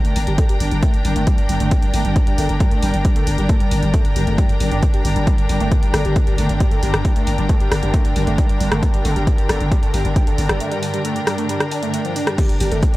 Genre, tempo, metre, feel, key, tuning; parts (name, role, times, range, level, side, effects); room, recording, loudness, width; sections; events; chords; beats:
driving peak-time techno; 135 BPM; 4/4; straight; G minor; A4 = 440 Hz
swarming drone; drone; 0.1-13.0 s; G2 to D3; -27 LUFS; equal; built-in reverb, sidechain pumping
techno drum kit; drums; 0.0-13.0 s; crash cymbal, hi-hat, rim click, shaker; -26 LUFS; equal; sidechain pumping on hats, sidechain pumping on cymbals, sidechain pumping on perc
rich studio string section; texture; 0.0-13.0 s; D4 to Bb5; -24 LUFS; left 1 dB; sidechain pumping
overdriven synth lead; riff; 0.1-13.0 s; F3 to D4; -26 LUFS; right 1 dB; phaser, cassette tape, sidechain pumping, tape echo
growling 808-style bass; bass; 0.2-12.8 s; G1; -20 LUFS; equal; sidechain pumping, low-pass filter
electronic kick drum; drums; 0.4-12.9 s; -16 LUFS; equal
little or no reverb; dry, gritty hardware recording; -15 LUFS; side -18 dB against mid
0.0-13.0 A section
filter sweep on analog synth lead 0.0-13.0; break 10.6-12.4
0.0 Gm
0.38 0.83 1.27 | 1.72 2.16 2.60 3.05 | 3.49 3.94 4.38 4.83 | 5.27 5.72 6.16 6.61 | 7.05 7.49 7.94 8.38 | 8.83 9.27 9.72 10.16 | 10.61 11.05 11.49 11.94 | 12.38 12.83